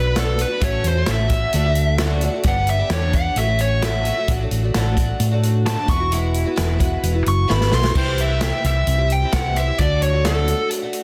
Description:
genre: folk rock and heartland rock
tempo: 131 BPM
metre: 4/4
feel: straight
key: unclear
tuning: A4 = 439 Hz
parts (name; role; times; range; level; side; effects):
- dark smooth lead guitar; melody; 0.0-10.7 s; A4 to C#6; -25 LUFS; equal; overdrive
- picked twelve-string acoustic guitar; accompaniment; 0.0-11.0 s; G2 to G4; -28 LUFS; equal; lush chorus
- hollow-body short-scale fingered electric bass; bass; 0.0-10.5 s; E1 to A2; -22 LUFS; equal; none
- natural country drum kit; drums; 0.2-11.0 s; crash cymbal, hi-hat, kick drum, snare drum; -26 LUFS; equal; none
room: light reverb, small room ambience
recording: dense, heavily limited modern master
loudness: -19 LUFS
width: mono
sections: 0.0-8.0 A section; 8.0-11.0 B section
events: lead electric guitar solo 0.0-8.0; drum fill 7.5-8.0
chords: 0.0 Bm; 0.6 A6; 1.5 D; 2.5 G; 3.4 A6; 4.3 D/A; 5.9 Eadd9; 8.0 C; 9.8 D

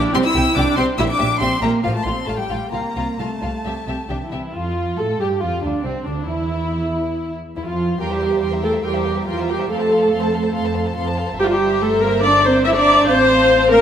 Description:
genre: quick classical-period movement for string orchestra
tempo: 141 BPM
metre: 4/4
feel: rubato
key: F major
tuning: A4 = 439 Hz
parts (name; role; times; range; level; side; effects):
- dark chamber viola section; accompaniment; 0.0-13.8 s; F3 to E5; -18 LUFS; equal; none
- warm chamber violin section; melody; 0.1-13.8 s; C4 to E6; -27 LUFS; left 4 dB; none
- warm chamber violin section; second line; 0.1-13.8 s; C4 to A5; -27 LUFS; left 2 dB; none
- clear chamber double bass section; bass; 0.1-13.8 s; G1 to A2; -26 LUFS; right 1 dB; none
- dark chamber cello section; bass; 0.1-13.8 s; A2 to E4; -24 LUFS; right 2 dB; none
room: moderate scoring stage reverb, RT60 1.7 s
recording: none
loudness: -16 LUFS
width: side -9 dB against mid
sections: 0.0-4.5 A section; 4.5-13.8 B section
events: none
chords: 0.1 C5; 1.0 C9/Bb; 1.8 F/A; 2.7 F/C; 3.6 C; 4.5 F; 6.3 N.C.; 8.0 C7/E; 9.7 F; 11.4 C7/G; 13.1 F/A

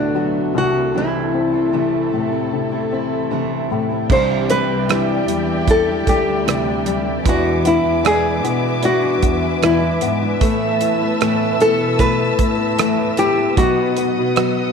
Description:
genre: pop ballad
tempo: 76 BPM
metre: 4/4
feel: straight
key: unclear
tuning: A4 = 442 Hz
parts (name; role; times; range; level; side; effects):
- nylon-string guitar; melody; 0.0-14.7 s; D4 to C5; -19 LUFS; left 1 dB; slapback echo
- warm baby grand piano; accompaniment; 0.0-14.7 s; C2 to E4; -22 LUFS; left 11 dB; none
- warm studio string section; sustained chords; 0.0-14.7 s; B2 to E6; -25 LUFS; equal; none
- fingerpicked steel-string acoustic guitar; arpeggios; 0.0-14.7 s; E2 to F#4; -24 LUFS; right 12 dB; none
- dark chamber cello section; bass; 4.1-14.7 s; C2 to B2; -24 LUFS; equal; none
- damped 70s drum kit; drums; 4.1-14.6 s; crash cymbal, hi-hat, kick drum, rim click; -20 LUFS; right 3 dB; none
room: moderate echo chamber reverb, RT60 1.8 s, studio ambience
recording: 1960s-style stereo with parts hard left and right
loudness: -15 LUFS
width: side -6 dB against mid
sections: 0.0-4.1 A section; 4.1-14.7 B section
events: none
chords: 0.0 D6; 0.5 Am/C; 4.1 Cadd9; 7.3 E7; 10.4 Asus2; 13.6 B

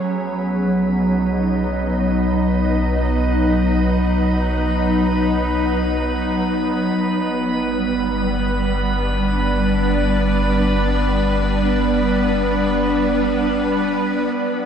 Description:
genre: ambient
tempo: free time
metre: none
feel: none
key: unclear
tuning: A4 = 439 Hz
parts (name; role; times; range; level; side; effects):
- evolving wavetable pad; sustained chords; 0.0-14.7 s; F#3 to D#5; -18 LUFS; equal; ensemble chorus, built-in reverb
- semi-hollow electric guitar; arpeggios; 0.0-1.3 s; none; barely audible; none; none
- round analog bass; bass; 0.0-14.7 s; G1 to B1; -23 LUFS; equal; none
- drifting glass-harmonics texture; texture; 0.0-14.7 s; B4 to B5; -27 LUFS; right 2 dB; chorus, built-in reverb
room: wet cathedral reverb, RT60 6.0 s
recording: in a vast, echoing space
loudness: -16 LUFS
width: side -8 dB against mid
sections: 0.0-14.4 A section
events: filter sweep on ambient pad 0.0-14.4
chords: 0.0 B; 7.0 G

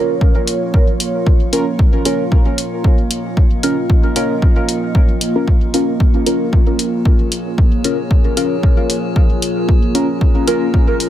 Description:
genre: dub techno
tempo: 114 BPM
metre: 4/4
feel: swing 55% on 16ths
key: Bb minor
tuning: A4 = 441 Hz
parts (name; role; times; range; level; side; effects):
- deep dark ambient pad; sustained chords; 0.0-11.1 s; Bb3 to Eb5; -22 LUFS; equal; chorus, built-in reverb, sidechain pumping
- deep mellow chord stab; stabs; 0.0-10.7 s; Db4 to Bb4; -20 LUFS; equal; chorus, phaser, sidechain pumping, dub echo
- metallic inharmonic drone; texture; 0.0-11.1 s; F3 to Ab4; -26 LUFS; equal; chorus, built-in reverb, sidechain pumping
- electronic kick drum; drums; 0.2-10.9 s; none; -12 LUFS; equal; none
- electronic hi-hat; drums; 0.5-11.1 s; none; -21 LUFS; left 2 dB; none
room: light reverb, digital ambience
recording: none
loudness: -12 LUFS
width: side -12 dB against mid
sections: 0.0-11.1 A section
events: none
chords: 0.0 Bbm

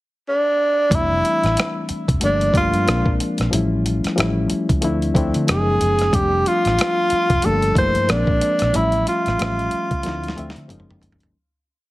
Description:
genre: R&B, neo-soul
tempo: 92 BPM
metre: 4/4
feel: swing 58% on 16ths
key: F major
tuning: A4 = 439 Hz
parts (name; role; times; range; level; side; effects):
- breathy tenor saxophone; melody; 0.3-10.7 s; D4 to C5; -19 LUFS; equal; none
- reed electric piano; accompaniment; 0.9-11.4 s; E3 to E5; -23 LUFS; left 2 dB; none
- vintage muted fingered electric bass; bass; 0.9-11.3 s; F1 to D3; -23 LUFS; equal; none
- dusty soul sampler-style drum kit; drums; 0.9-11.4 s; hi-hat, kick drum, rim click, snare drum, toms; -22 LUFS; equal; none
room: moderate studio reverb, RT60 0.6 s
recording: heavily compressed radio sound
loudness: -16 LUFS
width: side -18 dB against mid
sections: 0.0-0.9 pickup bar; 0.9-11.3 verse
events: fade-out 8.7-11.3; drum fill 10.0-11.3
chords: 0.0 N.C.; 0.9 Fmaj13; 2.2 Gm9; 2.9 Bb9; 3.5 A7b13; 4.8 Dm9; 5.5 Gbmaj13; 6.1 F69; 7.4 Gm9; 8.1 Bb9; 8.7 A7b13; 10.0 Dm9; 10.7 Gbmaj13

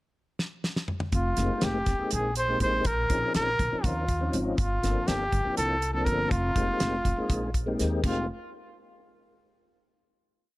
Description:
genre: electric jazz fusion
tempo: 243 BPM (eighths)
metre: 7/8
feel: straight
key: unclear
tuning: A4 = 443 Hz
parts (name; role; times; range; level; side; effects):
- damped 70s drum kit; drums; 0.4-8.2 s; crash cymbal, hi-hat, kick drum, snare drum, toms; -29 LUFS; equal; none
- breathy trumpet; melody; 1.1-8.3 s; F4 to C5; -29 LUFS; equal; none
- upright bass; bass; 1.1-8.3 s; F1 to Eb2; -30 LUFS; equal; none
- tonewheel organ; accompaniment; 1.4-8.3 s; F3 to Bb4; -32 LUFS; left 2 dB; overdrive, chorus vibrato, slow rotary speaker
room: small room ambience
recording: lossy compression artefacts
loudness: -25 LUFS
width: side -19 dB against mid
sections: 0.0-1.1 pickup bar; 1.1-8.0 A section; 8.0-9.8 final chord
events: drum fill 0.4-1.1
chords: 0.0 N.C.; 1.1 Fm11; 2.9 Bbm11; 4.6 Gm11; 6.3 Fm11

